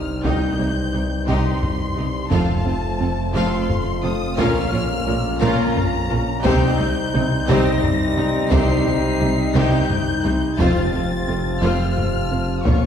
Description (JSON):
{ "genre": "cinematic, hybrid orchestral and electronic film score", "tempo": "58 BPM (dotted quarters)", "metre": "6/8", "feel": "straight", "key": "C phrygian", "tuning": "A4 = 440 Hz", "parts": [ { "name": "warm symphonic violin section", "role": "melody", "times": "0.0-12.9 s", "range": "A5 to C7", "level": "-28 LUFS", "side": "left 4 dB", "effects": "none" }, { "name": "mellow French horn section", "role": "sustained chords", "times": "0.0-12.9 s", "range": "C4 to F4", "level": "-26 LUFS", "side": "left 3 dB", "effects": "none" }, { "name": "mellow trombone section", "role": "sustained chords", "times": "0.0-12.9 s", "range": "F2 to Bb3", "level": "-28 LUFS", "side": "right 2 dB", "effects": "none" }, { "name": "thumb-piano-like synth pluck", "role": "arpeggios", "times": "0.0-12.9 s", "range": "C3 to F4", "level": "-28 LUFS", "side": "right 1 dB", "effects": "chorus, tape echo" }, { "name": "swelling detuned saw bass", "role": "bass", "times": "0.0-12.9 s", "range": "F1 to C2", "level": "-28 LUFS", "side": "equal", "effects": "none" }, { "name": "impact and swell", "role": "sound effects", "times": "0.0-0.2, 12.7-12.9 s", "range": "none", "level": "-42 LUFS", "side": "equal", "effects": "none" }, { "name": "rich symphonic viola section", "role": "accompaniment", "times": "0.2-12.9 s", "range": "Bb3 to G4", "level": "-28 LUFS", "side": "right 1 dB", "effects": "none" }, { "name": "dark symphonic cello section", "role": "bass", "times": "0.2-12.7 s", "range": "F2 to C3", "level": "-26 LUFS", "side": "right 2 dB", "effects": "none" }, { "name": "taiko ensemble", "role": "drums", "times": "0.2-12.9 s", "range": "none", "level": "-24 LUFS", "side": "equal", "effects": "none" }, { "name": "warm symphonic violin section", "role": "second line", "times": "0.3-12.9 s", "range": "A3 to F5", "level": "-27 LUFS", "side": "left 2 dB", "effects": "none" }, { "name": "warm studio double bass section", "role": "bass", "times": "0.3-12.7 s", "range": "F1 to C2", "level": "-26 LUFS", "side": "right 2 dB", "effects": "none" } ], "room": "wet scoring stage reverb, RT60 1.5 s", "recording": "heard from further back in the room", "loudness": "-17 LUFS", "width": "side -8 dB against mid", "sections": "0.0-12.9 A section", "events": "impact 0.0", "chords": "0.0 Cm; 2.3 F; 4.4 Bbm; 6.5 Cm; 10.6 F", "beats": "| 0.24 1.28 | 2.31 3.35 | 4.38 5.42 | 6.45 7.49 | 8.52 9.55 | 10.59 11.62 | 12.66" }